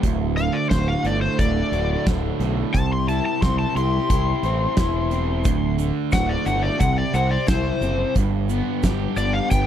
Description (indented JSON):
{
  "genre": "classic rock",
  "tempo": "89 BPM",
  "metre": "4/4",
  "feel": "straight",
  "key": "D mixolydian",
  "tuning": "A4 = 441 Hz",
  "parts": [
    { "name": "distorted electric guitar", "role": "riff", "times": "0.0-9.7 s", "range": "D2 to C5", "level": "-26 LUFS", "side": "right 15 dB", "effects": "distortion" },
    { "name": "overdriven semi-hollow guitar", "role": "riff", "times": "0.0-9.7 s", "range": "D2 to C5", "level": "-27 LUFS", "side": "left 15 dB", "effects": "none" },
    { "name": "growling fingered electric bass", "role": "bass", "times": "0.0-9.7 s", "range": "D1 to C2", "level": "-24 LUFS", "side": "equal", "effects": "overdrive" },
    { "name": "huge arena drum kit", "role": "drums", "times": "0.0-9.7 s", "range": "hi-hat, kick drum, snare drum", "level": "-24 LUFS", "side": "equal", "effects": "none" },
    { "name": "overdriven slide guitar", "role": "melody", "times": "0.4-9.7 s", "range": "C5 to C6", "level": "-25 LUFS", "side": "left 2 dB", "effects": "none" },
    { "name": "tube shaker", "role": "percussion", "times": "5.4-9.7 s", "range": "none", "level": "-42 LUFS", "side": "right 25 dB", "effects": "none" }
  ],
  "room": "little or no reverb",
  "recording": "dry, close 1970s-style studio recording",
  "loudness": "-19 LUFS",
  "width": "side -10 dB against mid",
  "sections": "0.0-9.7 A section",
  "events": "electric slide guitar solo 0.0-9.7",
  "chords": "0.0 D; 2.7 C; 5.5 D; 6.8 C; 8.2 G"
}